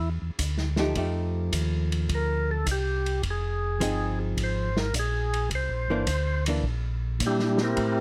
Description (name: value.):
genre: soul jazz organ trio.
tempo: 106 BPM.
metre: 4/4.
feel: swing 69% on 8ths.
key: unclear.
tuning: A4 = 440 Hz.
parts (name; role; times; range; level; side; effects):
percussive tonewheel organ; melody; 0.0-8.0 s; G3 to C5; -31 LUFS; equal; slow rotary speaker.
mellow tonewheel organ; bass; 0.0-8.0 s; F1 to Bb2; -30 LUFS; equal; slow rotary speaker.
vintage drum kit; drums; 0.4-8.0 s; hi-hat, kick drum, ride cymbal, snare drum; -35 LUFS; equal; none.
archtop guitar, miked and amplified; accompaniment; 0.8-6.6 s; E3 to Ab4; -32 LUFS; equal; none.
room: little or no reverb.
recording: close, detailed microphones.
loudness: -27 LUFS.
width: mono.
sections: 0.0-8.0 A section.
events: tonewheel organ solo 0.0-8.0.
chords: 0.0 Dmadd9; 1.0 F9; 3.2 Fm7; 5.5 C9.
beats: 0.40 | 0.97 1.54 2.10 2.67 | 3.24 3.81 4.38 4.94 | 5.51 6.08 6.65 7.21 | 7.78.